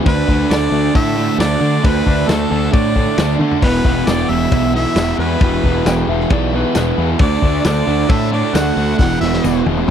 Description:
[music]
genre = classic rock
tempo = 134 BPM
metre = 4/4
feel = straight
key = unclear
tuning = A4 = 440 Hz
[part]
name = tonewheel organ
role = sustained chords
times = 0.0-9.9 s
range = G3 to G4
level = -32 LUFS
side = left 1 dB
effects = none
[part]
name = crunchy overdriven guitar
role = riff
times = 0.0-9.9 s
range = E2 to D4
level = -20 LUFS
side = right 16 dB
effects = none
[part]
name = distorted electric guitar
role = riff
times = 0.0-9.9 s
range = E2 to D4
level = -23 LUFS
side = left 13 dB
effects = overdrive
[part]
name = distorted electric guitar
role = riff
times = 0.0-9.9 s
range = E2 to D4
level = -23 LUFS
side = left 1 dB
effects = none
[part]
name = clear harmonica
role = melody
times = 0.1-9.6 s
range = A4 to F#5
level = -22 LUFS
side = left 1 dB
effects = none
[part]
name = octave-fuzz lead guitar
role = second line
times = 0.1-9.6 s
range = A3 to A4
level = -26 LUFS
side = right 5 dB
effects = distortion
[part]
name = fuzz picked electric bass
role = bass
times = 0.1-9.9 s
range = E1 to D3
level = -19 LUFS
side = left 1 dB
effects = overdrive
[part]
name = vintage drum kit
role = drums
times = 0.1-9.9 s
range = crash cymbal, kick drum, ride cymbal, snare drum, splash cymbal, toms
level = -17 LUFS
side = left 1 dB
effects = none
[part]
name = tambourine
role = percussion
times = 0.5-9.5 s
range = none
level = -35 LUFS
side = left 10 dB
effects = none
[part]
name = clean lap steel guitar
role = second line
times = 5.9-7.1 s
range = B4 to G5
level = -24 LUFS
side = left 3 dB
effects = none
[sound]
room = little or no reverb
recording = dry, close 1970s-style studio recording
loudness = -13 LUFS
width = side -8 dB against mid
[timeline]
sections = 0.0-9.9 A section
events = drum fill 3.4, 9.0-9.9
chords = 0.1 D; 3.6 Em; 7.2 D; 9.0 Emadd9

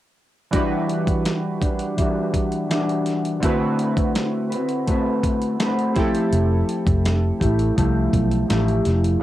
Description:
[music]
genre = indie pop, bedroom pop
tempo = 83 BPM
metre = 4/4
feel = straight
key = E minor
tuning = A4 = 442 Hz
[part]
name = chorused retro synth keys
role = accompaniment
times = 0.5-9.2 s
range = G2 to B4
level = -29 LUFS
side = right 4 dB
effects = cassette tape
[part]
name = mellow electric guitar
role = accompaniment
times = 0.5-9.2 s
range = D3 to B4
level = -21 LUFS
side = left 1 dB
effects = lush chorus, warbly pitch drift, cassette tape
[part]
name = dusty soul sampler-style drum kit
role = drums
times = 0.5-9.2 s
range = hi-hat, kick drum, snare drum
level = -24 LUFS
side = equal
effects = none
[part]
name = vintage muted fingered electric bass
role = bass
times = 6.3-9.2 s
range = F1 to C2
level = -20 LUFS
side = equal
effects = none
[sound]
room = light reverb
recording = home recording on cassette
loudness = -18 LUFS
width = side -14 dB against mid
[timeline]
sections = 0.5-9.2 A section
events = none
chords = 0.5 Em9; 3.4 D13; 6.0 Fmaj9

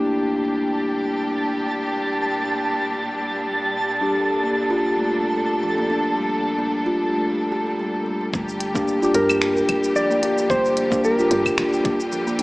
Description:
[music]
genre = organic downtempo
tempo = 111 BPM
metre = 4/4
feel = swing 55% on 16ths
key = G minor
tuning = A4 = 440 Hz
[part]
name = mellow tine electric piano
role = accompaniment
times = 0.0-12.0 s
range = Bb3 to G4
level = -24 LUFS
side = left 1 dB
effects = fast stereo tremolo, sidechain pumping, tape echo
[part]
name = rich symphonic string section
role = sustained chords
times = 0.0-12.4 s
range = Bb2 to A4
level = -26 LUFS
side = equal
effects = sidechain pumping
[part]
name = twinkling granular texture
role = texture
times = 0.2-8.3 s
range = A5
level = -27 LUFS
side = right 1 dB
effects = built-in reverb
[part]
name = kalimba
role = arpeggios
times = 4.0-12.4 s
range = F3 to G4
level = -25 LUFS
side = equal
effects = tape echo
[part]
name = woody FM bass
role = bass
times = 8.3-12.4 s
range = D1 to G2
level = -28 LUFS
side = equal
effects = none
[part]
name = electronic kick drum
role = drums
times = 8.3-12.0 s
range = none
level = -29 LUFS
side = equal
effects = small room ambience
[part]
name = organic electronic drum kit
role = drums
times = 8.3-12.4 s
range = claves, finger snaps, hi-hat, shaker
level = -26 LUFS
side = equal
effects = low-pass filter on perc, small room ambience, low-pass filter on hats, low-pass filter on snare
[part]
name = clean lap steel guitar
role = melody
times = 9.1-12.4 s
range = Bb4 to D5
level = -22 LUFS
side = equal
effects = digital delay
[sound]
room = moderate lush hall reverb, RT60 2.0 s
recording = small speaker sound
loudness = -19 LUFS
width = side -22 dB against mid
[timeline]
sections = 0.0-8.3 A section; 8.3-12.4 B section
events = none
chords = 0.0 Gm

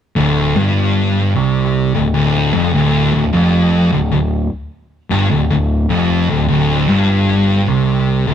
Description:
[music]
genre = metal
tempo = 76 BPM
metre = 4/4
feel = straight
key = D minor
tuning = A4 = 439 Hz
[part]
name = thick fuzz guitar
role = riff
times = 0.2-8.3 s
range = D2 to C3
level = -14 LUFS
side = left 2 dB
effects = distortion
[part]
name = thick fuzz guitar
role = riff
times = 0.2-8.3 s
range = D2 to C3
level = -19 LUFS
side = right 6 dB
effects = distortion
[part]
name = overdriven picked electric bass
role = bass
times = 0.2-8.3 s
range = D1 to C2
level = -20 LUFS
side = equal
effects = none
[sound]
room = light reverb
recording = rough rehearsal-room recording, tube saturation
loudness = -12 LUFS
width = side -9 dB against mid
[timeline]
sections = 0.2-8.3 A section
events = none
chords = 0.2 Dm

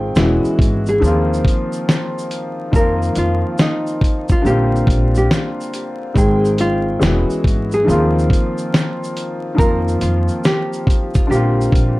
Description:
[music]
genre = lo-fi hip hop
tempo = 70 BPM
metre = 4/4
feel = swing 64% on 16ths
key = Bb major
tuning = A4 = 438 Hz
[part]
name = nylon-string guitar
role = melody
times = 0.0-12.0 s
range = Eb4 to Bb4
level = -21 LUFS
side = equal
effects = low-pass filter, plate reverb
[part]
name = clear upright piano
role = accompaniment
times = 0.0-12.0 s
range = D3 to G5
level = -20 LUFS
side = left 1 dB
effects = low-pass filter, plate reverb
[part]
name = upright bass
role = bass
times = 0.0-12.0 s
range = E1 to F2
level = -18 LUFS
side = equal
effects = none
[part]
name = dusty soul sampler-style drum kit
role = drums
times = 0.2-12.0 s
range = hi-hat, kick drum, shaker, snare drum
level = -16 LUFS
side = equal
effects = none
[sound]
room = moderate studio reverb, RT60 0.5 s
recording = vinyl crackle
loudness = -14 LUFS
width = side -19 dB against mid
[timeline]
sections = 0.0-12.0 A section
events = none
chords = 0.2 E69; 1.0 Ebsus2; 2.7 F7sus4; 4.4 Bb69; 6.2 Abmaj7; 7.0 E69; 7.9 Ebsus2; 9.6 F7sus4; 11.3 Bb69

